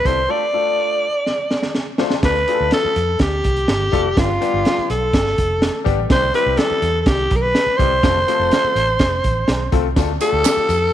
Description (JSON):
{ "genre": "uptempo 1960s-style soul", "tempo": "124 BPM", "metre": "4/4", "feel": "straight", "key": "D dorian", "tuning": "A4 = 441 Hz", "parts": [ { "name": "raspy alto saxophone", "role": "melody", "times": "0.0-10.9 s", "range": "F4 to D5", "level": "-18 LUFS", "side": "equal", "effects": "none" }, { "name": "clear upright piano", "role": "accompaniment", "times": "0.0-10.7 s", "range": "G3 to C5", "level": "-24 LUFS", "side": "left 12 dB", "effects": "none" }, { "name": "vintage muted fingered electric bass", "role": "bass", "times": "0.1-10.9 s", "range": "F1 to F2", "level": "-23 LUFS", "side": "right 1 dB", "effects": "none" }, { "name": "crunchy breakbeat drum kit", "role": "drums", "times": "0.1-10.8 s", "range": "hi-hat, kick drum, snare drum", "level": "-20 LUFS", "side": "right 1 dB", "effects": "none" }, { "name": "tambourine and handclaps", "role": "percussion", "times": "10.0-10.8 s", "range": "none", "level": "-27 LUFS", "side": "right 13 dB", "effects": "none" } ], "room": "light reverb", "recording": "1960s-style stereo with parts hard left and right", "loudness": "-15 LUFS", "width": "side -11 dB against mid", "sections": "0.0-2.2 A section; 2.2-10.9 A section", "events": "break 0.3-2.2; drum fill 1.3-2.2", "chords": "0.3 Dm; 4.2 G; 6.1 C; 8.0 F; 10.0 Dm", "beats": "| 0.29 0.78 1.26 1.75 | 2.23 2.71 3.20 3.68 | 4.17 4.65 5.13 5.62 | 6.10 6.58 7.07 7.55 | 8.03 8.52 9.00 9.48 | 9.97 10.45" }